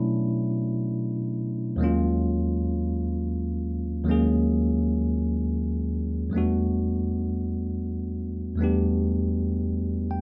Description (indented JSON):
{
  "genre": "R&B",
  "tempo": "53 BPM (dotted quarters)",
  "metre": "6/8",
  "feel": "straight",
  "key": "unclear",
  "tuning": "A4 = 440 Hz",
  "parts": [
    { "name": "bell-like tine electric piano", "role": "solo", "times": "0.0-10.2 s", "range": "D#2 to G5", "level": "-26 LUFS", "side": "equal", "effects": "none" }
  ],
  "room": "wet small room reverb, RT60 0.5 s",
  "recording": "rough home demo mix",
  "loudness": "-26 LUFS",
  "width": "mono",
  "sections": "0.0-6.3 A section; 6.3-10.2 B section",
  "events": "tine electric piano fill 9.7-10.2",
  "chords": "0.0 Bm11; 1.8 D#m11; 6.3 Em11",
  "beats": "0.67 | 1.80 2.93 | 4.06 5.20 | 6.33 7.46 | 8.59 9.72"
}